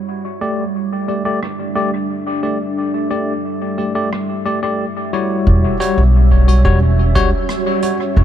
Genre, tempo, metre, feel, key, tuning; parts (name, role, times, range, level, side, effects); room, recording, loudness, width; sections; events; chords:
ambient dub; 89 BPM; 4/4; straight; E dorian; A4 = 440 Hz
deep dark ambient pad; sustained chords; 0.0-8.2 s; G3 to E5; -22 LUFS; right 1 dB; chorus, built-in reverb
bell-like tine electric piano; stabs; 0.4-8.0 s; G3 to D5; -20 LUFS; left 2 dB; medium stereo tremolo, low-pass filter, dub echo
jazz brush drum kit; drums; 0.4-8.0 s; hi-hat, rim click; -33 LUFS; right 2 dB; low-pass filter on hats, low-pass filter on snare, low-pass filter on room, dub echo
upright bass; bass; 5.5-8.2 s; E1 to C#2; -11 LUFS; equal; tube saturation
electronic kick drum; drums; 5.5-8.2 s; -19 LUFS; equal
wind-like tuned noise texture; texture; 5.9-8.2 s; C#4 to C#5; -27 LUFS; right 2 dB; built-in reverb
light reverb, small room ambience; dark, warm production; -14 LUFS; side -10 dB against mid
0.0-5.5 A section; 5.5-8.2 B section
0.1 A7sus4; 5.5 Em69